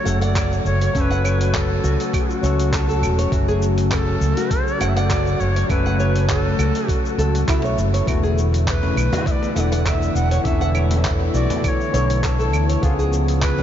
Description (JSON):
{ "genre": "organic downtempo", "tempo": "101 BPM", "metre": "4/4", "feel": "swing 54% on 16ths", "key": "F# minor", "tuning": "A4 = 440 Hz", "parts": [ { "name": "bright Native American-style cedar flute", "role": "melody", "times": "0.0-13.6 s", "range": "F#4 to F#5", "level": "-26 LUFS", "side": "equal", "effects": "ping-pong delay" }, { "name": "barky tine electric piano", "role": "accompaniment", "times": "0.0-13.6 s", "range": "C#3 to A4", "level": "-26 LUFS", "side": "left 4 dB", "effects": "sidechain pumping, ping-pong delay" }, { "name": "airy breathy pad", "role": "sustained chords", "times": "0.0-13.6 s", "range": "C#3 to F#4", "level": "-28 LUFS", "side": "left 1 dB", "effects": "chorus, sidechain pumping" }, { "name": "nylon-string guitar", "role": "arpeggios", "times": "0.1-13.6 s", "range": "C#4 to F#5", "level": "-26 LUFS", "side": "right 1 dB", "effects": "ping-pong delay" }, { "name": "mellow fretless electric bass", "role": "bass", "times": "0.1-13.6 s", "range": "E1 to D2", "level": "-20 LUFS", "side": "equal", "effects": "tube saturation, sidechain pumping" }, { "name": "dusty soul sampler-style drum kit", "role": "drums", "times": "0.1-13.6 s", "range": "claves, handclaps, hi-hat, shaker", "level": "-29 LUFS", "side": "right 1 dB", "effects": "none" }, { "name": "electronic kick drum", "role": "drums", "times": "0.4-13.5 s", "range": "none", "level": "-23 LUFS", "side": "equal", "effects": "none" }, { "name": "cajon", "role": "percussion", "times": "8.8-13.6 s", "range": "none", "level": "-30 LUFS", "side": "left 2 dB", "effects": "none" } ], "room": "moderate huge ambient reverb, RT60 8.1 s", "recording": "dreamy mix soaked in reverb, nothing above 7.5 kHz", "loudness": "-17 LUFS", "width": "side -10 dB against mid", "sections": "0.0-13.6 A section", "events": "none", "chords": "0.0 F#m; 8.1 E7sus4; 12.8 C#7" }